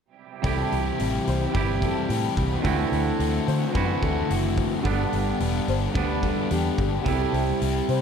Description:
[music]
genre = rock, shoegaze and dream pop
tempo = 109 BPM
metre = 4/4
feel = straight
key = unclear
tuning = A4 = 441 Hz
[part]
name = fingerpicked twelve-string acoustic guitar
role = arpeggios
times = 0.4-8.0 s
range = F#4 to C5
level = -32 LUFS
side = left 7 dB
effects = wide subtle chorus, tape echo
[part]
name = crunchy overdriven guitar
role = riff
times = 0.4-8.0 s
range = G2 to F#4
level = -28 LUFS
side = left 10 dB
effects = wide subtle chorus
[part]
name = twangy electric guitar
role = riff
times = 0.4-8.0 s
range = G2 to G4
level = -27 LUFS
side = right 11 dB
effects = reverse reverb
[part]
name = vintage muted fingered electric bass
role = bass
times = 0.4-8.0 s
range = E1 to D3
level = -27 LUFS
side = equal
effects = none
[part]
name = huge arena drum kit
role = drums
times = 0.4-8.0 s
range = hi-hat, kick drum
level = -31 LUFS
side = equal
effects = none
[sound]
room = light reverb, studio ambience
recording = dark, warm production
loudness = -22 LUFS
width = side -7 dB against mid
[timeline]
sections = 0.4-8.0 A section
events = none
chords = 0.4 Cmaj7; 2.6 D9; 4.9 G; 7.1 C

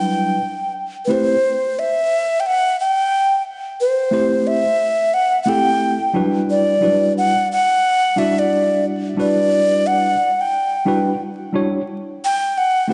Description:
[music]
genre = hip hop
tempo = 89 BPM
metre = 4/4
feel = swing 61% on 16ths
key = A dorian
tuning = A4 = 440 Hz
[part]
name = breathy alto ocarina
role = melody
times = 0.0-12.9 s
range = B4 to G5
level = -19 LUFS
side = equal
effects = delay
[part]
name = tine electric piano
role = accompaniment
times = 0.0-12.9 s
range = F#3 to D5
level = -22 LUFS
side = equal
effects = none
[sound]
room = wet lush hall reverb, RT60 1.6 s, small room ambience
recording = dreamy mix soaked in reverb, vinyl crackle, nothing above 10.4 kHz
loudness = -18 LUFS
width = mono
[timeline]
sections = 0.0-11.9 A section; 11.9-12.9 B section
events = ocarina solo 11.9-12.9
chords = 0.0 Em9; 1.1 Am7; 6.1 Em9; 11.9 A7(no3)

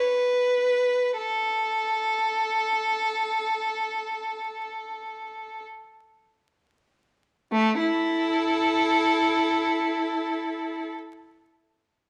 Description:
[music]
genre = classical, free, expressive piece for unaccompanied violin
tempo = free time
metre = none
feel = none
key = unclear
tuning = A4 = 440 Hz
[part]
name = rich violin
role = solo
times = 0.0-10.9 s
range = A3 to B4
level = -26 LUFS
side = equal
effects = none
[sound]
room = moderate recital hall reverb, RT60 1.3 s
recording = dark, warm production, vinyl crackle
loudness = -25 LUFS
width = mono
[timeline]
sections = 0.0-7.5 A section; 7.5-12.1 B section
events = slowing down 0.0-7.5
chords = none

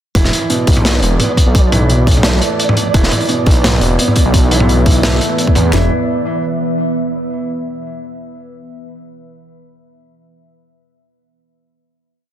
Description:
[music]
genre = half-time drum and bass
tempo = 172 BPM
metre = 4/4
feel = half-time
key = unclear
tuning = A4 = 440 Hz
[part]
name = felt-muted upright piano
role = arpeggios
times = 0.1-5.9 s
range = B2 to B3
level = -19 LUFS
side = right 3 dB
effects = vintage 12-bit sampler grit, digital delay
[part]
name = dark detuned saw bass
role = bass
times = 0.1-5.9 s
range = E1 to E2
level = -14 LUFS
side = equal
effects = none
[part]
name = trap drum kit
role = drums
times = 0.1-5.8 s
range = kick drum, snare drum, toms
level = -12 LUFS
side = equal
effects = none
[part]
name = flickering grainy texture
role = texture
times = 0.5-5.7 s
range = D5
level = -24 LUFS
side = right 3 dB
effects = built-in reverb
[part]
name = crunchy breakbeat drum kit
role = drums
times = 0.2-5.6 s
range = hi-hat, snare drum, toms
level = -16 LUFS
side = equal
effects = none
[part]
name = deep dark ambient pad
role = sustained chords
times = 3.9-5.9 s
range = E3 to E5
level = -20 LUFS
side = equal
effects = chorus, built-in reverb, sidechain pumping
[sound]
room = light reverb, small room ambience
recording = dense, heavily limited modern master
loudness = -11 LUFS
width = side -11 dB against mid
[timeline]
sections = 0.2-5.7 drop; 5.7-7.1 final chord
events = drop 0.2-5.7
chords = 0.2 E5

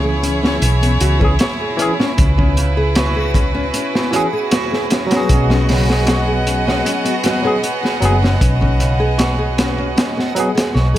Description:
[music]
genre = trip hop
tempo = 77 BPM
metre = 4/4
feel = straight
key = C# minor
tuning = A4 = 445 Hz
[part]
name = barky tine electric piano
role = accompaniment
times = 0.0-10.5 s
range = E3 to G#4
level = -21 LUFS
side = equal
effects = medium stereo tremolo, harmonic tremolo, tape echo
[part]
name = rich chamber violin section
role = sustained chords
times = 0.0-11.0 s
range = B3 to F#5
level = -22 LUFS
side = right 1 dB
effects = none
[part]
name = nylon-string guitar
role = arpeggios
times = 0.0-11.0 s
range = C#3 to C#5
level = -22 LUFS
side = left 1 dB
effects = tape echo
[part]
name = hollow-body short-scale fingered electric bass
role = bass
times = 0.0-11.0 s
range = F#1 to C#2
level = -17 LUFS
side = equal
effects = none
[part]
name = backwards swelling texture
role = texture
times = 0.2-11.0 s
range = F#4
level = -29 LUFS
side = right 2 dB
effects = built-in reverb
[part]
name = crunchy breakbeat drum kit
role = drums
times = 0.2-11.0 s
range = hi-hat, kick drum, snare drum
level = -18 LUFS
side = equal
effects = none
[sound]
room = little or no reverb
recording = none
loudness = -13 LUFS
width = side -13 dB against mid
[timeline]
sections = 0.0-11.0 A section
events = none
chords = 0.0 C#m; 5.3 G#m7

